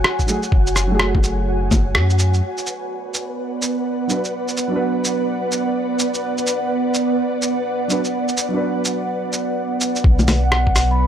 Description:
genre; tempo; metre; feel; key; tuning
future garage; 126 BPM; 4/4; swing 63% on 16ths; B dorian; A4 = 440 Hz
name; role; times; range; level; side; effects
dark upright piano; accompaniment; 0.0-10.1 s; F#3 to B4; -26 LUFS; right 1 dB; sidechain pumping, tape echo
ethereal airy pad; sustained chords; 0.0-11.1 s; B3 to G#5; -22 LUFS; right 2 dB; ensemble chorus, built-in reverb, sidechain pumping
dark detuned saw bass; bass; 0.0-2.4, 10.0-11.1 s; F#1 to F#2; -18 LUFS; equal; transformer saturation, sidechain pumping
lo-fi sampler-style drum kit; drums; 0.0-10.9 s; bongos, hi-hat, rim click, shaker; -20 LUFS; equal; none
flickering grainy texture; texture; 0.0-11.1 s; B4 to C#7; -31 LUFS; equal; built-in reverb
electronic kick drum; drums; 0.2-1.8, 10.0-10.7 s; none; -17 LUFS; equal; none
vibraphone with soft mallets; melody; 10.4-11.1 s; F#5 to B5; -21 LUFS; equal; none
room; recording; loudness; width
little or no reverb; dry, gritty hardware recording; -17 LUFS; side -9 dB against mid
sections
0.0-2.4 A section; 2.4-10.0 B section; 10.0-11.1 C section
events
kick drops out 1.9-2.4; band accent 1.9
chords
0.0 F#madd9; 2.4 Bm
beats
0.04 | 0.52 1.00 1.47 1.95 | 2.42 2.90 3.38 3.85 | 4.33 4.81 5.28 5.76 | 6.23 6.71 7.19 7.66 | 8.14 8.62 9.09 9.57 | 10.04 10.52 11.00

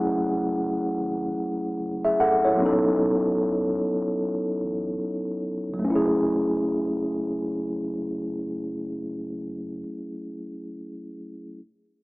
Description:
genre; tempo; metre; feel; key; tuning
lo-fi hip hop; 74 BPM; 4/4; swing 60% on 16ths; F# dorian; A4 = 440 Hz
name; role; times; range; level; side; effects
mellow tine electric piano; accompaniment; 0.0-11.6 s; F#3 to F#5; -24 LUFS; equal; medium stereo tremolo, low-pass filter
warm sub bass; bass; 0.0-9.8 s; F#1 to C#2; -45 LUFS; equal; tube saturation
room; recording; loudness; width
light reverb, digital ambience; dry, gritty hardware recording, small speaker sound; -23 LUFS; side -24 dB against mid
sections
0.0-5.8 A section; 5.8-9.1 B section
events
none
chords
0.0 F#m9; 2.6 B9; 5.8 F#m9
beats
0.16 0.97 1.78 | 2.60 3.41 4.22 5.03 | 5.84 6.65 7.46 8.27

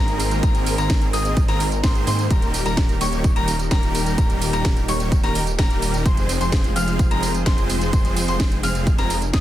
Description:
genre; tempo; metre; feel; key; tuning
EDM, festival progressive house; 128 BPM; 4/4; straight; Ab major; A4 = 436 Hz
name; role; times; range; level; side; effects
lush unison pad; sustained chords; 0.1-9.4 s; Eb3 to C5; -30 LUFS; equal; chorus, phaser, sidechain pumping
warm baby grand piano; arpeggios; 0.0-9.4 s; Bb5 to F6; -28 LUFS; left 2 dB; sidechain pumping, tape echo
supersaw chords; riff; 0.0-9.4 s; Eb3 to F5; -25 LUFS; equal; sidechain pumping, tape echo
wide detuned saw bass; bass; 0.0-9.4 s; Eb1 to Ab2; -25 LUFS; equal; chorus, sidechain pumping
house drum kit; drums; 0.1-9.4 s; hi-hat, snare drum, tambourine; -28 LUFS; right 1 dB; studio reverb
electronic kick drum; drums; 0.4-9.4 s; none; -19 LUFS; equal; studio reverb
room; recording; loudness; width
little or no reverb; dense, heavily limited modern master; -17 LUFS; side -13 dB against mid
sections
0.0-9.4 A section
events
none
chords
0.0 Abadd9; 2.3 Eb; 6.1 Fm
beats
| 0.43 0.90 1.37 1.84 | 2.31 2.77 3.24 3.71 | 4.18 4.65 5.12 5.59 | 6.06 6.53 6.99 7.46 | 7.93 8.40 8.87 9.34

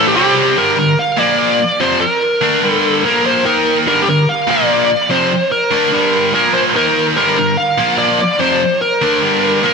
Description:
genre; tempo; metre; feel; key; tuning
rock; 146 BPM; 4/4; straight; G minor; A4 = 445 Hz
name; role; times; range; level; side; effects
high-gain lead guitar; melody; 0.0-9.7 s; G4 to F5; -14 LUFS; equal; distortion, tape echo
high-gain distorted guitar; riff; 0.0-9.7 s; F2 to Eb4; -14 LUFS; equal; distortion
room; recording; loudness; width
wet lush hall reverb, RT60 2.2 s; big arena sound; -11 LUFS; side -5 dB against mid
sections
0.6-9.7 A section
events
none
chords
0.2 C5; 0.6 G5; 1.2 Bb5; 1.6 Gm; 3.0 Bb5; 3.5 Eb5; 3.9 G5; 4.5 Bb5; 4.9 Gm; 6.3 Bb5; 6.8 Eb5; 7.2 G5; 7.8 Bb5; 8.2 Gm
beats
0.15 | 0.57 0.98 1.39 1.80 | 2.22 2.63 3.04 3.46 | 3.87 4.28 4.69 5.11 | 5.52 5.93 6.34 6.75 | 7.17 7.58 7.99 8.40 | 8.81 9.22 9.64

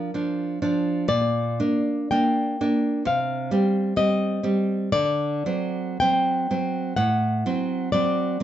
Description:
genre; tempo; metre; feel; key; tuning
romantic duo for nylon-string guitar and classical guitar; 53-67 BPM; 4/4; rubato; unclear; A4 = 440 Hz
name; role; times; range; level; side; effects
flamenco guitar; melody; 0.0-8.4 s; Bb4 to G5; -25 LUFS; left 2 dB; slapback echo
nylon-string guitar; accompaniment; 0.0-8.4 s; A2 to D4; -23 LUFS; right 2 dB; none
room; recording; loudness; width
wet small room reverb, RT60 0.6 s; dark, warm production, nothing above 7.8 kHz; -21 LUFS; side -11 dB against mid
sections
0.0-8.4 A section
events
none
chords
0.0 Bb; 3.1 Cm; 4.9 D7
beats
0.14 | 1.09 2.12 3.06 3.97 | 4.92 6.00 6.96 7.92

